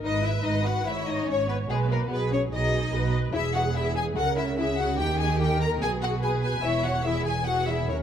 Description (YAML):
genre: quick classical-period movement for string orchestra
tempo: 145 BPM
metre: 4/4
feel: straight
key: G# minor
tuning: A4 = 440 Hz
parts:
  - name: warm symphonic violin section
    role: second line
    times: 0.0-8.0 s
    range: G#3 to A#4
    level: -31 LUFS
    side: left 3 dB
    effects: none
  - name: warm symphonic viola section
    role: accompaniment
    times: 0.0-8.0 s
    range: G4 to C#5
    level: -32 LUFS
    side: equal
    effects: none
  - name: dark symphonic cello section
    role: bass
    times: 0.0-8.0 s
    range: D#2 to D#3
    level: -31 LUFS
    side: right 3 dB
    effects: none
  - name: warm symphonic double bass section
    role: bass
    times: 0.0-8.0 s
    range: E1 to D#2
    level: -29 LUFS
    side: right 3 dB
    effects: none
  - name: rich symphonic violin section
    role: melody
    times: 0.1-8.0 s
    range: G#4 to A#5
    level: -29 LUFS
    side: left 4 dB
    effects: none
room: light reverb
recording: close, detailed microphones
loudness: -23 LUFS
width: side -9 dB against mid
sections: 0.0-8.0 A section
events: none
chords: 0.0 G#m; 1.7 G#m/B; 3.3 E; 4.2 C#madd11; 5.0 D#; 5.8 G#m/B; 6.6 C#m/E